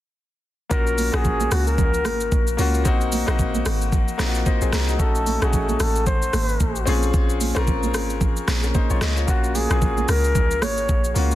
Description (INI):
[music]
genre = amapiano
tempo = 112 BPM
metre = 4/4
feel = swing 58% on 16ths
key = unclear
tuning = A4 = 444 Hz
[part]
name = trumpet with bucket mute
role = melody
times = 0.7-11.2 s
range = Gb4 to Db5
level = -25 LUFS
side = left 1 dB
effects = ping-pong delay
[part]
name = clear concert grand piano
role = accompaniment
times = 0.7-11.3 s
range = Gb3 to Bb5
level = -26 LUFS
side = left 4 dB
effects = none
[part]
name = deep log drum bass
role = bass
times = 0.7-11.3 s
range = Ab1 to Db2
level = -23 LUFS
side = equal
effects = none
[part]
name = smooth R&B drum kit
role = drums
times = 0.7-11.3 s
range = hi-hat, kick drum, rim click, shaker, snare drum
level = -23 LUFS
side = equal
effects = soft clipping on snare
[part]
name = congas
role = percussion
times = 1.0-11.3 s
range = none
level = -30 LUFS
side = right 7 dB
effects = none
[sound]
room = small room ambience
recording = dense, heavily limited modern master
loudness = -18 LUFS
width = side -14 dB against mid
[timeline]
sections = 0.7-11.3 A section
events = drop 0.7-11.3; grand piano fill 4.2-5.0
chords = 0.7 Ab9sus4 (rootless); 2.9 Ab9; 5.0 Ab7b9; 6.9 Bbm7; 9.3 Ab13sus4